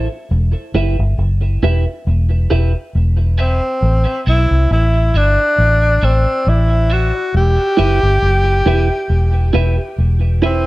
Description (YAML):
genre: dub reggae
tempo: 68 BPM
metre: 4/4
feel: swing 55% on 16ths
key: unclear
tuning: A4 = 441 Hz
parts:
  - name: clean electric guitar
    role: accompaniment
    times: 0.0-10.6 s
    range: E4 to E5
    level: -22 LUFS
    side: right 4 dB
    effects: wide subtle chorus, high-pass filter, tape echo
  - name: vintage muted fingered electric bass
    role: bass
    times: 0.0-10.6 s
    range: E1 to C2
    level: -13 LUFS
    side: equal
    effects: none
  - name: breathy tenor saxophone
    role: melody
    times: 3.4-10.7 s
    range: C4 to G4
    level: -17 LUFS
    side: equal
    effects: tape echo
room: light reverb, studio ambience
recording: dark, warm production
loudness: -12 LUFS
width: side -18 dB against mid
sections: 0.0-10.7 A section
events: filter sweep on clean electric guitar 0.3-7.3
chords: 0.3 Em; 3.8 Am; 7.3 Em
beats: | 0.30 1.18 2.06 2.94 | 3.82 4.70 5.58 6.46 | 7.34 8.22 9.10 9.98